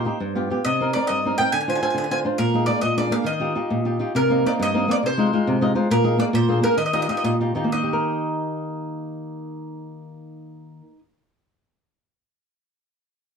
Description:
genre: italian folk, Italian serenade.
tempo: 121-139 BPM (dotted quarters).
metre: 6/8.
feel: straight.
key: Eb major.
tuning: A4 = 442 Hz.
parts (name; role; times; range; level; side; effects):
bowl-back mandolin; melody; 0.0-11.0 s; Bb4 to Ab5; -24 LUFS; equal; none.
flamenco guitar; accompaniment; 0.0-11.2 s; G2 to Eb5; -22 LUFS; equal; none.
room: moderate studio reverb, RT60 0.6 s.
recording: dark, warm production.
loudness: -19 LUFS.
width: side -6 dB against mid.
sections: 0.0-4.2 A section; 4.2-7.7 B section; 7.7-9.7 C section.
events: nylon-string guitar fill 5.5-5.9; slowing down 5.9-7.7.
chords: 0.2 G7; 0.6 Cm7; 1.5 Dm7b5; 2.4 Bb7sus4; 2.8 Bb7; 3.3 Ebadd9; 4.2 Cm7; 5.0 Fm7/C; 5.9 Bb7sus4; 6.3 Bb7; 6.8 Ebadd9; 7.7 Eb.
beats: 0.19 | 0.64 1.08 | 1.52 1.96 | 2.40 2.83 | 3.27 3.71 | 4.15 4.59 | 5.03 5.46 | 5.89 6.33 | 6.77 7.24 | 7.72 8.22 | 8.70 9.20.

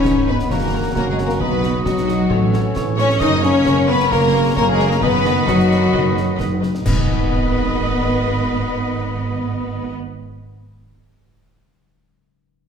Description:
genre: cinematic, heroic adventure film score.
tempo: 132 BPM.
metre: 4/4.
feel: straight.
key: G# minor.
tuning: A4 = 440 Hz.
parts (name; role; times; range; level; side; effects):
clear studio violin section; melody; 0.0-9.9 s; F#4 to D#5; -29 LUFS; left 4 dB; none.
mellow clarinet; second line; 0.0-9.9 s; D#4 to B4; -30 LUFS; left 1 dB; none.
mellow hollow silver concert flute; second line; 0.0-9.9 s; F#5 to D#6; -28 LUFS; left 4 dB; none.
warm oboe; second line; 0.0-9.9 s; C#5 to B5; -30 LUFS; right 3 dB; none.
warm symphonic violin section; second line; 0.0-9.9 s; F#4 to D#5; -28 LUFS; left 3 dB; none.
warm studio viola section; accompaniment; 0.0-9.9 s; F#4 to D#5; -30 LUFS; right 1 dB; none.
dark trombone section; sustained chords; 0.0-9.9 s; C#3 to D#4; -28 LUFS; right 3 dB; none.
mellow French horn section; sustained chords; 0.0-9.9 s; F#3 to D#4; -21 LUFS; left 3 dB; none.
concert harp; arpeggios; 0.0-10.8 s; F#2 to B5; -26 LUFS; left 8 dB; none.
warm symphonic cello section; bass; 0.0-9.9 s; F#3 to D#4; -25 LUFS; right 3 dB; none.
warm symphonic double bass section; bass; 0.0-9.9 s; F#1 to B1; -22 LUFS; right 4 dB; none.
concert snare drum, concert bass drum, clash cymbals and concert toms; drums; 0.1-7.0 s; none; -27 LUFS; equal; none.
clash cymbals and concert bass drum; percussion; 6.9-7.7 s; none; -25 LUFS; equal; none.
room: wet scoring stage reverb, RT60 1.5 s.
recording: none.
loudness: -15 LUFS.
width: side -7 dB against mid.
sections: 0.0-6.8 A section; 6.8-10.5 B section.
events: band accent 6.8-7.3.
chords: 0.5 F#; 1.4 B; 2.3 A; 3.2 F#; 5.0 B/F#; 6.8 G#m.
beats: 0.05 0.50 0.95 | 1.40 1.85 2.31 2.76 | 3.21 3.66 4.12 4.57 | 5.02 5.47 5.93 6.39 | 6.84 7.30 7.75 8.21 | 8.66 9.12 9.57 10.03.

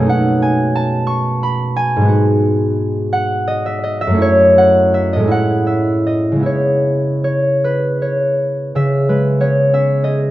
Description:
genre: classical, solo harp piece.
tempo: 50-65 BPM (dotted quarters).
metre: 6/8.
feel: rubato.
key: C# minor.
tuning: A4 = 440 Hz.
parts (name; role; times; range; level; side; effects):
concert harp; solo; 0.0-10.3 s; F#2 to C#6; -13 LUFS; equal; none.
room: light reverb.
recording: dark, warm production.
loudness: -13 LUFS.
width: side -15 dB against mid.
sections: 0.0-8.8 A section; 8.8-10.3 B section.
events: none.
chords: 0.1 B9; 2.1 G#m7; 4.2 F#m7; 5.3 Amaj7; 6.5 C#m7.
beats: | 0.10 1.09 | 2.11 3.12 | 4.21 5.30 | 6.45 7.63 | 8.75 9.71.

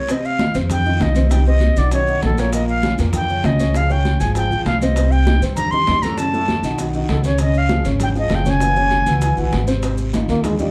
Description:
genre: Afro-Cuban jazz.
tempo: 197 BPM.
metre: 4/4.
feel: straight.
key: unclear.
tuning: A4 = 441 Hz.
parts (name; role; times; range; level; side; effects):
bright reedy concert flute; melody; 0.0-9.5 s; A4 to C6; -23 LUFS; equal; plate reverb.
warm upright piano; accompaniment; 0.1-10.7 s; A2 to Db5; -26 LUFS; equal; none.
bongos; percussion; 0.1-10.6 s; none; -32 LUFS; equal; none.
congas; percussion; 0.1-10.7 s; none; -28 LUFS; equal; none.
guiro; percussion; 0.1-10.7 s; none; -40 LUFS; equal; none.
maracas; percussion; 0.1-10.7 s; none; -40 LUFS; equal; none.
upright bass; bass; 0.5-10.7 s; Gb1 to G2; -21 LUFS; equal; none.
mellow trombone; second line; 10.3-10.7 s; G3 to Bb3; -21 LUFS; equal; none.
room: wet club reverb, RT60 0.5 s.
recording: heard from further back in the room.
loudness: -18 LUFS.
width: mono.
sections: 0.1-9.8 A section.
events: none.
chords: 0.1 Fsus2; 1.3 Cm; 1.9 Badd9; 2.5 Bbmadd11; 3.8 Db; 5.0 Cm; 6.2 Gbm7; 6.8 Badd9; 7.4 Db; 8.6 Gb7sus2; 9.8 Ab6.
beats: | 0.10 0.40 0.70 1.01 | 1.31 1.62 1.92 2.23 | 2.53 2.84 3.14 3.45 | 3.75 4.05 4.36 4.66 | 4.97 5.27 5.58 5.88 | 6.18 6.49 6.79 7.10 | 7.40 7.71 8.01 8.31 | 8.62 8.92 9.22 9.53 | 9.83 10.14 10.44.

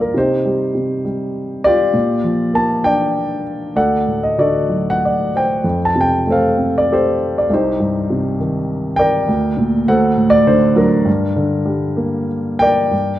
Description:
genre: classical, lyrical solo piano.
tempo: 99 BPM.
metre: 3/4.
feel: rubato.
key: G minor.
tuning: A4 = 441 Hz.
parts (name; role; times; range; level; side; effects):
warm grand piano; solo; 0.0-13.2 s; C2 to A5; -14 LUFS; equal; none.
room: moderate scoring stage reverb, RT60 1.5 s.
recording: dark, warm production.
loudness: -14 LUFS.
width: side -13 dB against mid.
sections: 0.0-12.9 A section.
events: none.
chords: 0.1 Cm; 1.9 Gm7/Bb; 3.8 D; 5.6 Fadd9; 7.5 Cm; 9.3 Gm/D; 9.9 D7; 11.1 Gm.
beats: | 0.15 0.74 1.34 | 1.94 2.54 3.14 | 3.75 4.38 5.01 | 5.64 6.26 6.88 | 7.49 8.09 8.69 | 9.28 9.87 10.46 | 11.06 11.67 12.30 | 12.93.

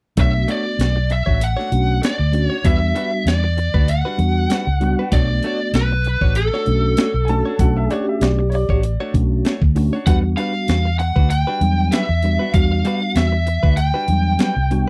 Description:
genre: straight-eighth soul blues.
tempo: 97 BPM.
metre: 4/4.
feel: swing 54% on 16ths.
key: B minor.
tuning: A4 = 443 Hz.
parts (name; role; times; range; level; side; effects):
lead guitar through a small cranked amp; melody; 0.2-14.9 s; A4 to G5; -25 LUFS; equal; overdrive, slapback echo.
mellow tine electric piano; accompaniment; 0.2-14.9 s; F#3 to F#4; -25 LUFS; equal; ensemble chorus.
direct-recorded clean electric guitar; stabs; 0.2-14.8 s; G3 to C#5; -30 LUFS; equal; none.
vintage muted fingered electric bass; bass; 0.2-14.8 s; A1 to E2; -21 LUFS; equal; none.
breakbeat sampler-style drum kit; drums; 0.2-14.9 s; hi-hat, kick drum, snare drum; -21 LUFS; equal; none.
clear upright piano; second line; 7.2-9.1 s; C#5 to A5; -30 LUFS; equal; none.
room: little or no reverb.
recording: dry, close 1970s-style studio recording.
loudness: -18 LUFS.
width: mono.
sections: 0.2-14.9 A section.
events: none.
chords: 0.2 Bm9; 2.6 Em9; 5.1 Bm9; 10.1 Em9.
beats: | 0.17 0.79 1.41 2.03 | 2.65 3.27 3.88 4.50 | 5.12 5.74 6.36 6.98 | 7.59 8.21 8.83 9.45 | 10.07 10.69 11.30 11.92 | 12.54 13.16 13.78 14.40.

